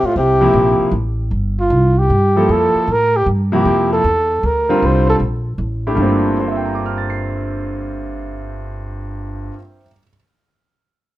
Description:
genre	jazz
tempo	154 BPM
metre	3/4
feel	swing 66% on 8ths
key	G dorian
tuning	A4 = 440 Hz
part	breathy trumpet	melody	0.0-5.2 s	F4 to C5	-15 LUFS	right 1 dB	plate reverb
part	clear tenor saxophone	second line	0.0-0.9 s	A2 to C3	-21 LUFS	left 3 dB	none
part	upright bass	bass	0.0-9.5 s	G1 to A2	-19 LUFS	equal	none
part	clear grand piano	accompaniment	0.4-10.1 s	G2 to C7	-18 LUFS	equal	none
room	moderate club reverb, RT60 0.6 s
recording	none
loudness	-13 LUFS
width	side -15 dB against mid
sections	0.0-1.3 A section; 1.3-6.0 B section; 6.0-8.3 C section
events	trumpet solo 1.3-6.0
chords	0.0 Fsus2; 1.3 Gm11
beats	| 0.15 0.54 0.93 | 1.32 1.71 2.10 | 2.48 2.87 3.26 | 3.65 4.04 4.43 | 4.82 5.21 5.60 | 5.99 6.38 6.77 | 7.16 7.55 7.94

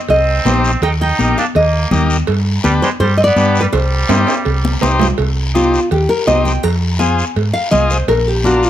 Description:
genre	latin, cumbia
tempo	165 BPM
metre	4/4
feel	straight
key	C minor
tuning	A4 = 440 Hz
part	nylon-string guitar	melody	0.1-8.7 s	F4 to Bb5	-16 LUFS	left 1 dB	none
part	clear trumpet	second line	0.1-4.8 s	G3 to Eb4	-21 LUFS	right 4 dB	none
part	hollow-body short-scale fingered electric bass	bass	0.1-8.7 s	Bb1 to Ab2	-16 LUFS	equal	none
part	congas	percussion	0.1-8.6 s	none	-21 LUFS	left 4 dB	none
part	cowbell and timbales	percussion	0.1-8.3 s	none	-22 LUFS	right 8 dB	none
part	guiro	percussion	0.1-8.7 s	none	-27 LUFS	left 4 dB	none
part	overdriven combo organ	accompaniment	0.5-8.7 s	D4 to Eb5	-19 LUFS	left 3 dB	none
room	light reverb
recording	close, detailed microphones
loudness	-12 LUFS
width	side -11 dB against mid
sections	0.0-5.2 A section; 5.2-8.7 B section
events	drum fill 4.1-5.2; nylon-string guitar solo 5.2-8.7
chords	0.0 Cm; 0.8 Eb; 2.3 G; 3.7 Cm; 6.6 Fm; 8.1 Bb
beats	0.10 0.46 | 0.82 1.19 1.55 1.92 | 2.28 2.65 3.01 3.37 | 3.73 4.10 4.46 4.82 | 5.19 5.55 5.91 6.27 | 6.63 7.00 7.36 7.72 | 8.08 8.45

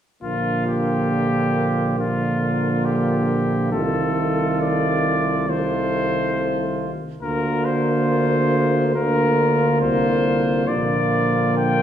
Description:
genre	classical, brass quintet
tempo	69 BPM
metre	4/4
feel	straight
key	Bb major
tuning	A4 = 440 Hz
part	warm trumpet	melody	0.2-11.8 s	F4 to G5	-24 LUFS	left 3 dB	none
part	clear flugelhorn	second line	0.2-11.8 s	F4	-28 LUFS	right 5 dB	none
part	clear French horn	accompaniment	0.2-11.8 s	A3 to Bb3	-24 LUFS	equal	none
part	warm trombone	accompaniment	0.2-11.8 s	D3 to Eb3	-26 LUFS	right 2 dB	none
part	clear tuba	bass	0.2-11.8 s	Bb1 to D2	-24 LUFS	right 1 dB	none
room	wet recital hall reverb, RT60 1.4 s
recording	heard from further back in the room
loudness	-18 LUFS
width	side -9 dB against mid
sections	0.2-11.8 A section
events	none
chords	0.2 Bb; 3.7 F7/C; 7.2 Bb/D; 10.7 Bb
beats	| 0.23 1.11 1.99 2.86 | 3.73 4.62 5.50 6.36 | 7.22 8.08 8.95 9.81 | 10.68 11.57

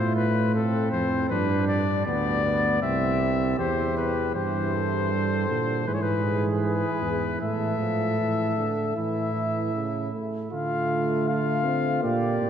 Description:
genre	classical, imitative canzona for brass ensemble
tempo	79 BPM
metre	4/4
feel	straight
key	C major, D minor from 4.4 s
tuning	A4 = 440 Hz
part	clear cornet	melody	0.0-12.5 s	A4 to F5	-28 LUFS	left 6 dB	none
part	mellow flugelhorn	second line	0.0-12.5 s	B3 to A4	-30 LUFS	right 3 dB	none
part	mellow tuba	bass	0.0-12.5 s	C2 to D3	-27 LUFS	right 2 dB	none
part	warm euphonium	accompaniment	4.3-12.5 s	C#3 to C4	-30 LUFS	right 2 dB	none
room	wet cathedral reverb, RT60 4.8 s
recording	dark, warm production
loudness	-23 LUFS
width	side -8 dB against mid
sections	0.0-4.4 A section; 4.4-10.5 B section; 10.5-12.5 C section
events	none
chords	0.0 F/A; 1.3 G; 2.8 C; 4.4 Edim/G; 5.9 E/G#; 7.4 Asus4; 9.0 A; 10.5 Dm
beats	0.56 | 1.31 2.08 2.83 3.59 | 4.36 5.12 5.88 6.63 | 7.40 8.19 8.97 9.75 | 10.53 11.29 12.04

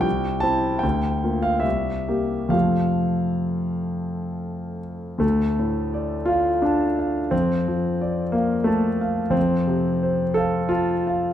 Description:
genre	classical, romantic nocturne for solo piano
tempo	64-91 BPM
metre	3/4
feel	rubato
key	F major, D minor from 5.2 s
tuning	A4 = 440 Hz
part	warm concert grand piano	solo	0.0-11.3 s	C2 to A5	-20 LUFS	equal	none
room	moderate recital hall reverb, RT60 1.4 s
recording	dark, warm production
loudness	-20 LUFS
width	side -10 dB against mid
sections	0.0-5.2 A section; 5.2-11.3 B section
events	none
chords	0.1 C; 0.8 Bb/D; 1.6 C7; 2.5 F; 5.2 Dm; 7.3 Dm/F; 9.4 F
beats	| 0.05 0.84 1.64 | 2.54 3.43 4.35 | 5.23 5.94 6.64 | 7.33 8.02 8.68 | 9.36 10.02 10.72

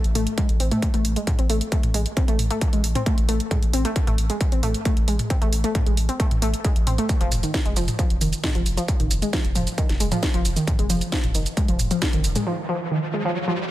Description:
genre	driving peak-time techno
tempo	134 BPM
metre	4/4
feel	straight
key	A harmonic minor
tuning	A4 = 439 Hz
part	saturated sub bass	bass	0.0-12.4 s	F1 to A1	-25 LUFS	equal	tube saturation, sidechain pumping, low-pass filter
part	techno drum kit	drums	0.0-12.4 s	hi-hat, shaker, snare drum, toms	-28 LUFS	equal	overdrive, studio reverb
part	warbly dusty pluck	riff	0.2-13.5 s	D#3 to C4	-26 LUFS	equal	chorus, overdrive, sidechain pumping, tape echo
part	electronic kick drum	drums	0.4-12.1 s	none	-23 LUFS	equal	distortion, overdrive, studio reverb
part	riser	sound effects	11.8-13.7 s	none	-32 LUFS	right 1 dB	none
room	light reverb, digital ambience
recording	none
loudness	-20 LUFS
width	side -14 dB against mid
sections	0.0-13.7 A section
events	riser 11.8-13.7; break 12.5-13.7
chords	none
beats	0.38 0.82 1.27 | 1.72 2.17 2.62 3.06 | 3.51 3.96 4.41 4.85 | 5.30 5.75 6.20 6.64 | 7.09 7.54 7.99 8.44 | 8.88 9.33 9.78 10.23 | 10.68 11.12 11.57 12.02 | 12.47 12.91 13.36

